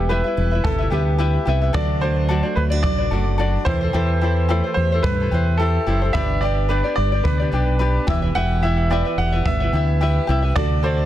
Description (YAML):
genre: acoustic pop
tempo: 109 BPM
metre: 4/4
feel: swing 55% on 16ths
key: unclear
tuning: A4 = 444 Hz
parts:
  - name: bright upright piano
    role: melody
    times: 0.0-11.1 s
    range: G4 to F#5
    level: -25 LUFS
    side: right 1 dB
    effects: digital delay
  - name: tenor ukulele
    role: accompaniment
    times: 0.0-11.1 s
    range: D4 to E5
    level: -25 LUFS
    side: left 4 dB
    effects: none
  - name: picked steel-string acoustic guitar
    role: arpeggios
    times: 0.0-11.1 s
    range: E3 to G4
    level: -28 LUFS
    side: right 6 dB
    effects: digital delay
  - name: fingered electric bass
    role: bass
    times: 0.0-11.1 s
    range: E1 to G2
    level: -20 LUFS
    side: equal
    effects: none
  - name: kick drum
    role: drums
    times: 0.6-10.7 s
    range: none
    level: -24 LUFS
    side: equal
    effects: none
room: light reverb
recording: dense, heavily limited modern master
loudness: -17 LUFS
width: side -12 dB against mid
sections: 0.0-11.1 A section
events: none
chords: 0.0 Em; 1.7 D; 3.7 C6/E; 6.1 G; 8.1 Em